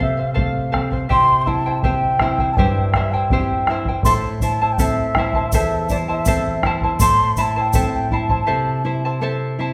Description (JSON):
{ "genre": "andean folk, Andean ensemble", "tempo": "81 BPM", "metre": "2/4", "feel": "straight", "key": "A minor", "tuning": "A4 = 440 Hz", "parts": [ { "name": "mellow large quena", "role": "melody", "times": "0.0-9.2 s", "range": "D5 to C6", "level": "-23 LUFS", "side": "equal", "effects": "none" }, { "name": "charango", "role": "accompaniment", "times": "0.0-9.7 s", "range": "E4 to A5", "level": "-26 LUFS", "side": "equal", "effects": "none" }, { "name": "nylon-string guitar", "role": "accompaniment", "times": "0.0-9.7 s", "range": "E2 to E4", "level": "-25 LUFS", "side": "equal", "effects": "none" }, { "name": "bombo", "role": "percussion", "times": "0.0-8.5 s", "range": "none", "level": "-24 LUFS", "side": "equal", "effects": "none" }, { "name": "tube shaker", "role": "percussion", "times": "4.1-7.9 s", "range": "none", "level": "-33 LUFS", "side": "equal", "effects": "none" } ], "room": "wet recital hall reverb, RT60 1.4 s", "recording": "none", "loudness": "-19 LUFS", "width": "mono", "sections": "0.0-9.7 A section", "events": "break 8.5-9.7", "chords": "0.0 F; 1.1 C; 4.0 Am", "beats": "0.36 | 1.10 1.84 | 2.58 3.31 | 4.05 4.79 | 5.52 6.26 | 7.00 7.74 | 8.48 9.21" }